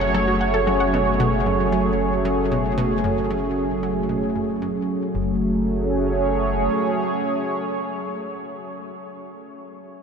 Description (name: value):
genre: ambient, sequencer-driven space music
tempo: 114 BPM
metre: 4/4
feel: straight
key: F# minor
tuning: A4 = 441 Hz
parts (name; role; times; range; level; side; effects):
- sweeping resonant pad; sustained chords; 0.0-9.1 s; F#3 to C#5; -21 LUFS; right 1 dB; chorus
- wide unison pluck; arpeggios; 0.0-0.9 s; F#4 to F#5; -32 LUFS; left 1 dB; auto-pan, ping-pong delay
- analog pluck; riff; 0.0-5.4 s; F#2 to F#3; -28 LUFS; left 1 dB; chorus, ping-pong delay
- round analog bass; bass; 0.0-6.7 s; F#1; -28 LUFS; left 1 dB; none
room: wet huge ambient reverb, RT60 8.7 s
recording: none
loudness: -19 LUFS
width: side -6 dB against mid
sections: 0.0-5.1 A section; 5.1-9.4 B section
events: fade-out on synth arpeggio sound 0.0-5.1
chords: 0.0 F#madd9